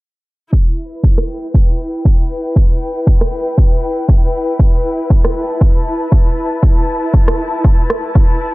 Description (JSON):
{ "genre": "deep house", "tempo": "118 BPM", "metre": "4/4", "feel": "swing 56% on 16ths", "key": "E minor", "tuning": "A4 = 439 Hz", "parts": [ { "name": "electronic kick drum", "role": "drums", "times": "0.5-8.3 s", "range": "none", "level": "-10 LUFS", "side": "equal", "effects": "none" }, { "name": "rich studio string section", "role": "texture", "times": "0.5-8.5 s", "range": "E4 to A5", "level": "-20 LUFS", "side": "left 1 dB", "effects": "sidechain pumping" }, { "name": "electronic rim click", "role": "drums", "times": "1.2-8.0 s", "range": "none", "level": "-21 LUFS", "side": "right 1 dB", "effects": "soft clipping on snare, low-pass filter on snare" } ], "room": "studio reverb", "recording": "dense, heavily limited modern master, low-pass filter", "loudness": "-12 LUFS", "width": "side -21 dB against mid", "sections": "0.5-8.5 A section", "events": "filter sweep on drum 0.5-8.5; filter sweep 0.5-8.5", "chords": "0.5 Em", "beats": "| 0.53 1.03 1.54 2.05 | 2.56 3.07 3.58 4.08 | 4.59 5.10 5.61 6.12 | 6.63 7.14 7.64 8.15" }